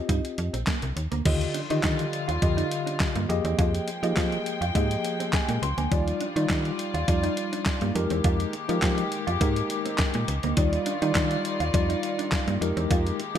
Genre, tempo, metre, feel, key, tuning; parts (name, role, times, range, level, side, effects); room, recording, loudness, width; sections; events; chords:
early-eighties boogie funk; 103 BPM; 4/4; straight; A4 = 440 Hz
mellow tine electric piano; accompaniment; 0.0-13.4 s; D3 to C6; -29 LUFS; left 2 dB; medium stereo tremolo
mellow electric guitar; riff; 0.0-13.4 s; Ab3 to F4; -34 LUFS; right 8 dB; wide subtle chorus
slap-like FM bass; bass; 0.1-13.4 s; Bb1 to F3; -27 LUFS; equal
crisp 8-bit digital drum machine; drums; 0.1-13.4 s; crash cymbal, handclaps, hi-hat, kick drum, snare drum; -28 LUFS; equal
warm studio string section; sustained chords; 1.2-13.4 s; D3 to G5; -33 LUFS; left 3 dB
light reverb, digital ambience; -23 LUFS; side -9 dB against mid
0.0-1.3 A section; 1.3-13.4 B section
0.0 Eb69; 1.3 Ebmaj9; 3.3 Fm11; 5.9 Ebmaj9; 8.0 Fm11; 10.6 Ebmaj9; 12.6 Fm11